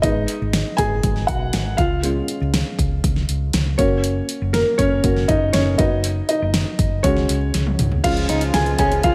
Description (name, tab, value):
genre	piano-driven pop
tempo	120 BPM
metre	4/4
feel	straight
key	unclear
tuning	A4 = 440 Hz
part	felt-muted upright piano	accompaniment	0.0-9.1 s	E#3 to G#5	-23 LUFS	equal	none
part	hollow-body short-scale fingered electric bass	bass	0.0-9.1 s	F#1 to C#2	-24 LUFS	equal	none
part	deep house drum kit	drums	0.0-9.1 s	crash cymbal, hi-hat, kick drum, snare drum, toms	-24 LUFS	equal	none
part	accordion	sustained chords	8.0-9.1 s	C#3 to E#4	-31 LUFS	equal	light tremolo tuning
part	fingerpicked steel-string acoustic guitar	riff	8.3-8.9 s	C#4 to D#4	-28 LUFS	equal	none
room	light reverb, digital ambience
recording	none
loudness	-19 LUFS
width	mono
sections	0.0-8.0 A section; 8.0-9.1 B section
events	felt piano solo 0.0-8.0, 8.0-9.1; drum fill 7.5-8.0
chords	0.0 G#m; 1.8 C#; 3.8 F#; 5.8 B/F#; 7.0 C#sus4; 8.0 C#